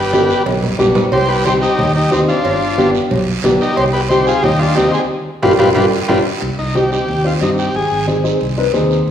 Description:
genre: latin, cumbia.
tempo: 181 BPM.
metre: 4/4.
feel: straight.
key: C harmonic minor.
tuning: A4 = 436 Hz.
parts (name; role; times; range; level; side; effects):
overdriven combo organ; melody; 0.0-8.1 s; C4 to C5; -17 LUFS; left 1 dB; none.
fingered electric bass; bass; 0.0-9.1 s; G1 to G2; -20 LUFS; equal; none.
dark upright piano; accompaniment; 0.1-9.0 s; B3 to B4; -16 LUFS; left 1 dB; none.
congas; percussion; 0.1-9.1 s; none; -24 LUFS; right 2 dB; none.
guiro; percussion; 0.1-9.1 s; none; -28 LUFS; right 5 dB; none.
timbales and cowbell; percussion; 0.1-6.2 s; none; -22 LUFS; right 4 dB; none.
room: wet recital hall reverb, RT60 1.5 s.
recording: recorded in a church or concert hall.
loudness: -12 LUFS.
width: side -9 dB against mid.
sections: 0.0-6.4 A section; 6.4-9.1 B section.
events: drum fill 0.1-1.1, 5.1-6.4; band accent 5.1-6.4.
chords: 0.0 G; 1.1 Cm; 2.4 G7; 3.8 Cm; 5.1 G7; 6.4 Cm; 7.7 Ab.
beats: 0.13 0.46 0.79 | 1.12 1.45 1.78 2.12 | 2.45 2.78 3.11 3.44 | 3.77 4.10 4.43 4.76 | 5.09 5.43 5.76 6.09 | 6.42 6.75 7.08 7.41 | 7.75 8.08 8.41 8.74 | 9.07.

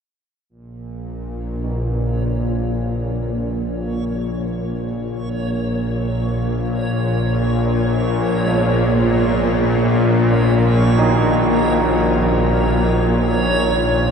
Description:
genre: dark ambient drone.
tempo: free time.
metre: none.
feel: none.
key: Bb minor.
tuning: A4 = 441 Hz.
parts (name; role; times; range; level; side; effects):
bowed-like drone; drone; 0.7-14.1 s; Bb1 to Bb2; -17 LUFS; equal; built-in reverb.
backwards swelling texture; texture; 2.1-14.1 s; Db5; -26 LUFS; right 1 dB; built-in reverb, shimmer reverb.
old church bells; arpeggios; 1.6-14.1 s; Bb2 to Eb4; -26 LUFS; right 2 dB; ping-pong delay, shimmer reverb.
room: wet huge ambient reverb, RT60 8.2 s.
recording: dark, warm production.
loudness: -16 LUFS.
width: side -6 dB against mid.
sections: 0.5-14.1 A section.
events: fade-in on synth texture 0.5-14.1; fade-in on church bells 0.5-14.1.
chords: 0.5 Bbm.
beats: free time.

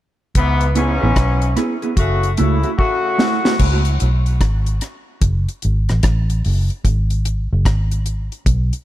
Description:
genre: dub reggae.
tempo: 74 BPM.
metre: 4/4.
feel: swing 64% on 16ths.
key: C# minor.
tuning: A4 = 440 Hz.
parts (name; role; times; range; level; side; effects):
mellow horn section; second line; 0.4-3.4 s; G#2 to F#4; -20 LUFS; left 2 dB; dub echo.
vintage muted fingered electric bass; bass; 0.4-8.7 s; F#1 to C#2; -16 LUFS; equal; none.
deep reggae drum kit; drums; 0.4-8.8 s; crash cymbal, hi-hat, kick drum, rim click, snare drum; -19 LUFS; equal; none.
mellow electric guitar; accompaniment; 0.8-3.5 s; A3 to G#4; -22 LUFS; right 4 dB; dub echo.
room: small room reverb.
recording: echo-heavy mix.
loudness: -15 LUFS.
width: side -14 dB against mid.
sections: 0.4-3.6 A section; 3.6-8.8 B section.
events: drum fill 2.8-3.6.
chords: 0.4 C#m7; 2.0 F#m7; 3.6 C#5; 5.2 F#m; 6.8 N.C..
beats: | 0.36 1.17 1.98 2.79 | 3.60 4.41 5.22 6.03 | 6.84 7.65 8.46.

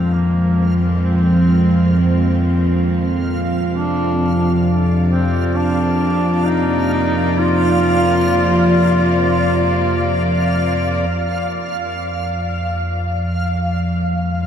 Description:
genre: dark ambient drone.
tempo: free time.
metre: none.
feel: none.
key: unclear.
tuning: A4 = 439 Hz.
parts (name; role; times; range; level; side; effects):
clear duduk; melody; 0.0-10.2 s; Bb3 to F4; -22 LUFS; equal; shimmer reverb, diffuse ambient delay.
rich chamber cello section; sustained chords; 0.0-14.5 s; F2 to D5; -21 LUFS; left 1 dB; shimmer reverb.
analog drone; drone; 0.0-14.5 s; F2 to F3; -17 LUFS; equal; chorus.
backwards swelling texture; texture; 0.0-14.5 s; F5; -26 LUFS; right 3 dB; built-in reverb, shimmer reverb.
room: wet huge ambient reverb, RT60 8.7 s.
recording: dark, warm production.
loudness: -14 LUFS.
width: side -8 dB against mid.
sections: 0.0-11.1 A section; 11.1-14.5 B section.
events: fade-in on cello section 0.0-11.1; fade-in on synth texture 0.0-11.1; fade-in on duduk 0.0-11.1.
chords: 0.0 Fm; 3.7 Bb; 11.1 N.C..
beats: free time.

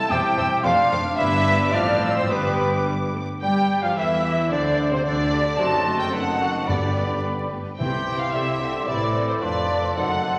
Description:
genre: quick classical-period movement for symphony orchestra.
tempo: 110 BPM.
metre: 2/4.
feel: straight.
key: C major.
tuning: A4 = 441 Hz.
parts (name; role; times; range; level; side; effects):
clear clarinet; second line; 0.0-10.4 s; F#4 to A5; -34 LUFS; equal; none.
mellow cor anglais; second line; 0.0-10.4 s; B3 to G5; -31 LUFS; equal; none.
rich chamber violin section; second line; 0.0-10.4 s; C4 to A5; -34 LUFS; equal; none.
silver concert flute; second line; 0.0-10.4 s; B4 to D6; -29 LUFS; equal; none.
warm bassoon; accompaniment; 0.0-10.4 s; C3 to G4; -33 LUFS; equal; none.
warm French horn section; sustained chords; 0.0-10.4 s; C3 to A4; -35 LUFS; equal; none.
rich chamber violin section; melody; 0.1-10.4 s; C5 to F6; -30 LUFS; equal; none.
rich chamber viola section; accompaniment; 0.1-10.4 s; F3 to C5; -35 LUFS; equal; none.
rich chamber cello section; bass; 0.1-10.4 s; E2 to G3; -31 LUFS; equal; none.
rich chamber double bass section; bass; 0.1-10.4 s; E1 to G2; -32 LUFS; equal; none.
timpani; percussion; 6.7-8.6 s; G2 to C3; -32 LUFS; equal; none.
room: wet scoring stage reverb, RT60 1.9 s.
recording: vinyl crackle.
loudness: -22 LUFS.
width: mono.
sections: 0.0-3.4 A section; 3.4-10.4 B section.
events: none.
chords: 0.1 C/E; 0.6 Dm7/F; 1.2 G; 1.7 F/A; 2.3 G; 3.4 Fmaj9; 4.5 Csus2/D; 5.1 D5; 5.6 F#dim7; 6.7 G; 7.8 C; 8.9 Am; 9.4 Dm7/F.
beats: | 0.11 0.65 | 1.19 1.74 | 2.30 2.86 | 3.42 3.97 | 4.52 5.06 | 5.59 6.13 | 6.68 7.24 | 7.79 8.34 | 8.88 9.42 | 9.96.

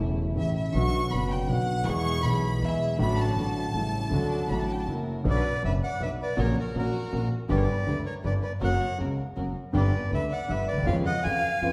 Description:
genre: tango.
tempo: 160 BPM.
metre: 3/4.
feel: rubato.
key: D major, B harmonic minor from 5.3 s.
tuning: A4 = 435 Hz.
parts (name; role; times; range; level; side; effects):
warm concert grand piano; accompaniment; 0.0-11.7 s; E1 to G#4; -31 LUFS; equal; none.
warm chamber string section; stabs; 0.0-11.7 s; A3 to B4; -39 LUFS; equal; none.
upright bass; bass; 0.0-11.7 s; E1 to E#2; -33 LUFS; equal; none.
rich studio violin section; second line; 0.4-11.7 s; F#4 to C#6; -35 LUFS; equal; none.
bandoneon; melody; 5.3-11.7 s; A#4 to G#5; -34 LUFS; equal; none.
room: wet large studio reverb, RT60 1.4 s.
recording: heard from further back in the room.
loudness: -27 LUFS.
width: mono.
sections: 0.0-5.3 A section; 5.3-11.7 B section.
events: violin section solo 0.0-5.3.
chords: 0.0 A; 0.7 Bm; 1.9 E; 3.0 D/A; 3.7 A7; 4.1 D; 4.9 F#7; 5.3 Bm; 6.4 F#/A#; 7.5 G; 8.6 F#; 9.7 G; 10.9 C#7/E#.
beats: 0.37 | 0.75 1.13 1.51 | 1.88 2.25 2.63 | 3.00 3.37 3.74 | 4.12 4.49 4.87 | 5.25 5.63 6.00 | 6.38 6.75 7.12 | 7.50 7.87 8.24 | 8.62 8.99 9.37 | 9.75 10.13 10.50 | 10.88 11.25 11.62.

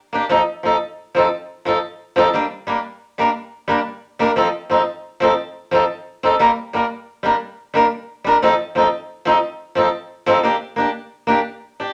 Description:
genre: highlife.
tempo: 118 BPM (dotted quarters).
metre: 12/8.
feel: straight.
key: F mixolydian.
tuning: A4 = 441 Hz.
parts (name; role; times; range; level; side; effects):
picked swing-style acoustic guitar; solo; 0.1-11.9 s; F3 to Bb4; -18 LUFS; equal; none.
room: wet studio reverb, RT60 0.7 s.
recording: none.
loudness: -19 LUFS.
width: mono.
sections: 0.0-11.9 A section.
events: none.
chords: 0.3 F7; 2.3 Gm; 4.4 F7; 6.4 Gm; 8.4 F7; 10.4 Bb6.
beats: | 0.31 0.81 1.32 1.83 | 2.34 2.85 3.35 3.86 | 4.37 4.88 5.38 5.89 | 6.40 6.90 7.41 7.92 | 8.42 8.93 9.43 9.94 | 10.45 10.95 11.46.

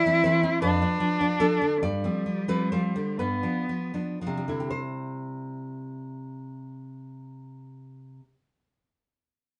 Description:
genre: romantic duo for cello and classical guitar.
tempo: 36-53 BPM (dotted quarters).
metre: 6/8.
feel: rubato.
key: C major.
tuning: A4 = 445 Hz.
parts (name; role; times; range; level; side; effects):
rich cello; melody; 0.0-3.9 s; G3 to E4; -28 LUFS; equal; none.
nylon-string guitar; accompaniment; 0.0-8.6 s; F2 to D5; -31 LUFS; equal; none.
room: light reverb.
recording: band playing live in one room, nothing above 10.9 kHz.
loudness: -27 LUFS.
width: mono.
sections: 0.0-4.7 A section; 4.7-7.6 B section.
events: slowing down 0.0-4.7.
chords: 0.0 C; 0.6 Dm/F; 1.8 G7sus4; 3.2 G7; 4.7 C.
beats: 0.64 | 1.83 3.17 | 4.71 6.15.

